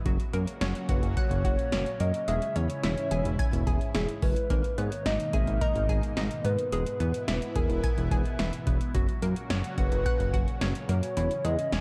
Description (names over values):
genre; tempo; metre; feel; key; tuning
synth-pop; 108 BPM; 4/4; straight; unclear; A4 = 440 Hz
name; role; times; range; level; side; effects
lush unison pad; sustained chords; 0.0-11.8 s; G#2 to F#4; -38 LUFS; equal; chorus, phaser
analog pluck; arpeggios; 0.1-11.8 s; E3 to G#5; -40 LUFS; equal; chorus, phaser, slapback echo
fat analog bass; bass; 0.1-11.8 s; E1 to G#2; -32 LUFS; equal; none
electro analog drum machine; drums; 0.1-11.8 s; hi-hat, kick drum, snare drum; -32 LUFS; equal; none
hollow clarinet-like synth lead; melody; 0.9-11.8 s; G#4 to G#5; -35 LUFS; equal; chorus, phaser, slapback echo
room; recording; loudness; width
light reverb; dark, warm production; -28 LUFS; mono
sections
0.0-11.8 A section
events
none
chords
0.1 F#; 2.3 C#m/E; 4.5 G#madd9; 6.7 E; 8.9 F#; 11.2 C#m/E